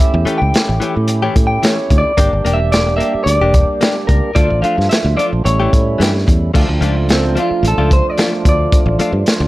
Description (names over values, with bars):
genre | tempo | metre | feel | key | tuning
straight-eighth soul blues | 110 BPM | 4/4 | swing 54% on 16ths | D harmonic minor | A4 = 440 Hz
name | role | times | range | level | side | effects
electric guitar through a small old amp | melody | 0.0-9.5 s | C4 to G5 | -18 LUFS | equal | none
percussive tonewheel organ | accompaniment | 0.0-9.5 s | F3 to G4 | -21 LUFS | right 3 dB | overdrive, slow rotary speaker
direct-recorded clean electric guitar | stabs | 0.1-9.5 s | E3 to G4 | -21 LUFS | left 4 dB | none
fingered electric bass | bass | 0.1-9.5 s | E1 to A2 | -16 LUFS | equal | none
crunchy breakbeat drum kit | drums | 0.3-9.4 s | crash cymbal, hi-hat, kick drum, snare drum | -15 LUFS | equal | none
room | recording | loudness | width
light reverb | none | -12 LUFS | side -17 dB against mid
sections
0.0-6.5 A section; 6.5-9.5 B section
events
clean electric guitar solo 6.5-9.5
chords
0.0 A7; 2.2 Gm; 4.4 Dm; 5.4 A7; 6.5 Dm